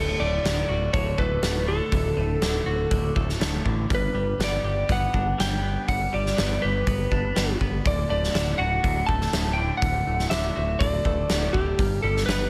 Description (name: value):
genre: quiet-loud alternative rock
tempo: 122 BPM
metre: 4/4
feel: straight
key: D major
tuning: A4 = 440 Hz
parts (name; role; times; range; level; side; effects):
- lightly driven lead guitar; melody; 0.0-12.5 s; G4 to A5; -29 LUFS; equal; none
- twelve-string electric guitar; arpeggios; 0.0-12.5 s; D2 to G4; -33 LUFS; equal; phaser
- growling picked electric bass; bass; 0.0-12.5 s; D1 to A1; -29 LUFS; equal; overdrive
- huge arena drum kit; drums; 0.5-12.4 s; hi-hat, kick drum, snare drum; -29 LUFS; equal; none
room: little or no reverb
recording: none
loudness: -24 LUFS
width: mono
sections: 0.0-12.5 A section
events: none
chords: 0.0 D; 3.9 G; 7.9 D; 11.8 G